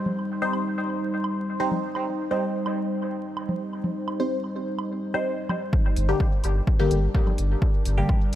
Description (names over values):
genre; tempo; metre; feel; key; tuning
dub techno; 127 BPM; 4/4; straight; G minor; A4 = 440 Hz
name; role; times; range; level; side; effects
deep dark ambient pad; sustained chords; 0.0-8.4 s; G3 to C5; -30 LUFS; equal; chorus, built-in reverb, sidechain pumping
congas and woodblock; percussion; 0.1-8.2 s; none; -34 LUFS; right 1 dB; sidechain pumping on perc, dub echo
filtered dub chord stab; stabs; 0.4-8.1 s; D3 to C5; -28 LUFS; left 1 dB; phaser, sidechain pumping, dub echo
electronic kick drum; drums; 5.7-8.2 s; none; -22 LUFS; equal; none
soft dub sub bass; bass; 6.0-8.4 s; G1; -23 LUFS; equal; sidechain pumping
electronic hi-hat; drums; 6.0-8.4 s; none; -37 LUFS; equal; overdrive
room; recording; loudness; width
light reverb; vinyl crackle; -23 LUFS; side -12 dB against mid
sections
0.0-5.7 A section; 5.7-8.4 B section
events
filter sweep on ambient pad 0.0-5.7; filter sweep on synth stab 5.7-8.4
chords
0.0 Cm; 5.7 Gm